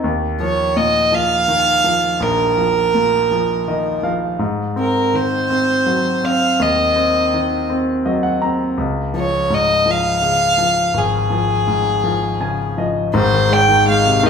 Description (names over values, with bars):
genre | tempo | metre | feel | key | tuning
pop | 55 BPM (dotted quarters) | 6/8 | straight | Ab major | A4 = 439 Hz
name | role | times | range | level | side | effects
bright concert grand piano | accompaniment | 0.0-14.3 s | Ab1 to Bb5 | -18 LUFS | left 1 dB | none
warm violin | melody | 0.4-14.3 s | Ab4 to G5 | -16 LUFS | right 1 dB | none
room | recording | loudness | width
wet large studio reverb, RT60 1.1 s | band playing live in one room | -14 LUFS | side -6 dB against mid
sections
0.0-13.1 A section; 13.1-14.3 B section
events
grand piano fill 3.3-4.4, 7.7-8.8, 12.0-13.1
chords
0.0 Ebsus2; 4.4 Ab7; 8.8 Db; 13.1 Ab